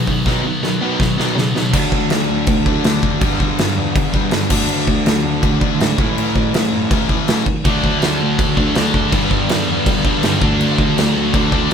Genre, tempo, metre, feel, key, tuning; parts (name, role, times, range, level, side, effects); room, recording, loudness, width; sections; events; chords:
punk rock; 162 BPM; 4/4; straight; A4 = 440 Hz
distorted electric guitar; riff; 0.0-11.7 s; G2 to E4; -21 LUFS; right 8 dB; distortion
heavy high-gain guitar; riff; 0.0-1.7, 7.7-11.7 s; G2 to D4; -21 LUFS; left 1 dB; distortion
sludgy distorted guitar; riff; 0.0-11.7 s; G2 to D4; -20 LUFS; left 7 dB; overdrive
muted cello; bass; 0.0-11.7 s; D2 to B3; -22 LUFS; equal
big rock drum kit; drums; 0.1-11.7 s; crash cymbal, kick drum, snare drum; -18 LUFS; equal
light reverb; band playing live in one room; -14 LUFS; side -7 dB against mid
0.0-1.7 A section; 1.7-11.7 B section
drum fill 0.3-1.7
0.0 B; 1.7 D; 3.2 G; 4.5 D; 6.0 A; 7.6 D; 9.1 G; 10.4 D